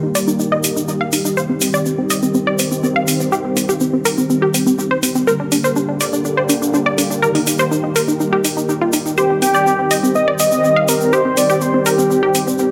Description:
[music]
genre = progressive house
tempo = 123 BPM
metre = 4/4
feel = straight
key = C minor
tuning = A4 = 439 Hz
[part]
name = filtered supersaw swell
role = sustained chords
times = 0.0-12.7 s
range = D3 to G4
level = -22 LUFS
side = equal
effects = low-pass filter
[part]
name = unison pluck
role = arpeggios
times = 0.0-12.7 s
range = C4 to F5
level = -20 LUFS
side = equal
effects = dub echo
[part]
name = electronic hi-hat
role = drums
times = 0.2-12.4 s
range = none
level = -24 LUFS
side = equal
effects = none
[part]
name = egg shaker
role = percussion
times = 0.2-12.7 s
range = none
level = -27 LUFS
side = equal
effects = none
[part]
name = unison lead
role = melody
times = 9.2-12.7 s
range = G4 to Eb5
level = -17 LUFS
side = equal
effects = dub echo
[sound]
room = moderate lush hall reverb, RT60 1.9 s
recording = none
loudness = -16 LUFS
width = mono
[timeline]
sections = 0.0-12.7 A section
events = filter sweep on supersaw synth 0.0-12.7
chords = 0.0 Eb; 1.4 Cm; 5.3 Gm/D; 7.2 Eb; 9.2 Cm

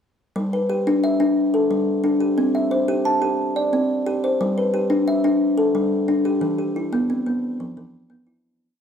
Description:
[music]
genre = southern african traditional, mbira-style interlocking cycle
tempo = 119 BPM (dotted quarters)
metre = 12/8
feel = straight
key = G mixolydian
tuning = A4 = 440 Hz
[part]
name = kalimba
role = solo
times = 0.4-8.6 s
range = E3 to A5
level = -18 LUFS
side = left 1 dB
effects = none
[sound]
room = moderate recital hall reverb, RT60 1.5 s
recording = none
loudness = -18 LUFS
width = side -8 dB against mid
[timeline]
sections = 0.4-8.4 A section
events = fade-out 6.4-8.4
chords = 0.4 G; 2.4 C; 4.4 G; 6.4 Em

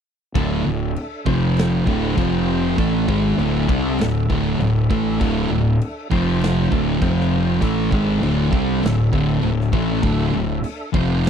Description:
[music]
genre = stoner and doom metal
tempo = 99 BPM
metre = 4/4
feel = straight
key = D minor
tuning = A4 = 440 Hz
[part]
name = percussive tonewheel organ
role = sustained chords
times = 0.3-11.3 s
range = D4 to G5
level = -32 LUFS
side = equal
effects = slow rotary speaker, chorus vibrato
[part]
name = thick fuzz guitar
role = riff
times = 0.3-11.3 s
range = D2 to C4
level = -21 LUFS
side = left 9 dB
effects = distortion
[part]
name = fuzz fingered electric bass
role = bass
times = 0.3-11.3 s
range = D1 to C2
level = -25 LUFS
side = equal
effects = overdrive
[part]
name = thick fuzz guitar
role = riff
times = 0.4-11.3 s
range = D2 to C4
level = -21 LUFS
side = right 9 dB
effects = distortion
[part]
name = big rock drum kit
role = drums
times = 0.4-11.3 s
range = crash cymbal, kick drum, snare drum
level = -25 LUFS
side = equal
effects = none
[sound]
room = little or no reverb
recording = dry, close 1970s-style studio recording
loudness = -17 LUFS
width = side -7 dB against mid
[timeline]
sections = 0.4-11.3 A section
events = none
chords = 0.4 D5; 1.3 F5; 1.9 D5; 2.2 F5; 2.8 D5; 6.1 F5; 6.7 D5; 7.0 F5; 7.6 D5

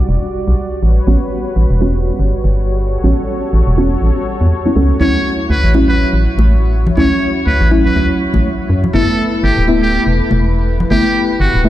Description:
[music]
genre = deep house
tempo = 122 BPM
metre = 4/4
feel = swing 57% on 16ths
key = unclear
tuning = A4 = 440 Hz
[part]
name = warm analog pad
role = sustained chords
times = 0.0-11.7 s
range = G3 to D5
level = -23 LUFS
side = left 1 dB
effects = chorus
[part]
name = deep mellow chord stab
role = stabs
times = 0.0-11.7 s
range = F#3 to A4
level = -17 LUFS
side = equal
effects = chorus, ping-pong delay
[part]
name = organ-like FM bass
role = bass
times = 0.0-11.7 s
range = D1 to F#2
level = -12 LUFS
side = equal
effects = none
[part]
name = trumpet with metal mute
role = melody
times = 5.0-11.6 s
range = F#4 to C#5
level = -19 LUFS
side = right 1 dB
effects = ping-pong delay
[part]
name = congas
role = percussion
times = 5.0-11.7 s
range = none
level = -22 LUFS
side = left 2 dB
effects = none
[sound]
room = light reverb, small room ambience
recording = played on a big sound system in a bare room, large studio reverb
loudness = -11 LUFS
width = side -14 dB against mid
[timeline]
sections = 0.0-11.7 A section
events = filter sweep on synth stab 0.0-11.7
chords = 0.0 Em7 (rootless); 0.8 A13; 5.0 Dmaj9 (rootless); 8.9 G69

